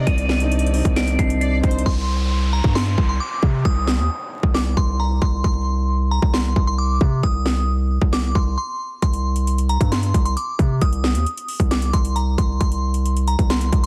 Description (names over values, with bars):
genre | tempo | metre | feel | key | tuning
hip hop, trap | 134 BPM | 4/4 | half-time | C minor | A4 = 440 Hz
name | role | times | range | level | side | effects
dark symphonic violin section | second line | 0.0-1.8 s | C5 to D5 | -36 LUFS | equal | digital delay
dark grand piano | accompaniment | 0.0-1.9 s | C3 to Eb4 | -28 LUFS | equal | low-pass filter
dark symphonic string section | sustained chords | 0.0-1.8 s | Eb3 to D5 | -35 LUFS | equal | none
distorted 808-style bass | bass | 0.0-13.9 s | C2 to C3 | -22 LUFS | equal | distortion
glassy synth bell | melody | 0.1-13.9 s | Bb5 to Eb7 | -29 LUFS | equal | chorus, low-pass filter
trap drum kit | drums | 0.1-13.9 s | hi-hat, kick drum, snare drum | -22 LUFS | equal | overdrive
downlifter | sound effects | 1.9-5.4 s | none | -36 LUFS | equal | none
room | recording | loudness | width
little or no reverb | dense, heavily limited modern master, vinyl crackle | -20 LUFS | mono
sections
0.0-1.9 A section; 1.9-13.9 B section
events
hi-hats muted 1.9-9.0; break 8.6-9.0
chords
0.0 Cmadd9; 1.9 Cm